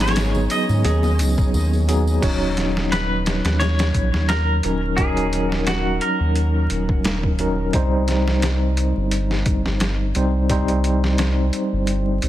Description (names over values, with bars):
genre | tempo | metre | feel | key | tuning
trip hop | 87 BPM | 4/4 | swing 55% on 16ths | unclear | A4 = 440 Hz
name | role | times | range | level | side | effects
clean electric guitar | melody | 0.0-6.7 s | Gb4 to Eb5 | -26 LUFS | right 1 dB | tremolo, dub echo
tine electric piano | accompaniment | 0.0-12.3 s | Gb3 to Db5 | -23 LUFS | equal | fast stereo tremolo, low-pass filter, tape echo
warm studio string section | sustained chords | 0.0-2.2 s | Db4 | -34 LUFS | left 2 dB | low-pass filter
flamenco guitar | arpeggios | 0.0-1.2 s | Ab4 | -32 LUFS | right 2 dB | vintage 12-bit sampler grit, dub echo
round analog bass | bass | 0.0-12.3 s | Eb1 to Ab2 | -21 LUFS | equal | none
trip hop sampler-style drum kit | drums | 0.0-12.3 s | crash cymbal, hi-hat, kick drum, snare drum | -23 LUFS | equal | overdrive, small room ambience
tambourine and congas | percussion | 0.0-2.2 s | none | -33 LUFS | equal | none
room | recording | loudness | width
little or no reverb | dense, heavily limited modern master, vinyl crackle | -17 LUFS | side -13 dB against mid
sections
0.0-2.2 A section; 2.2-12.3 B section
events
filter sweep on tine electric piano 2.2-12.3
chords
0.0 Abm7; 2.2 Ebm7; 7.7 Cm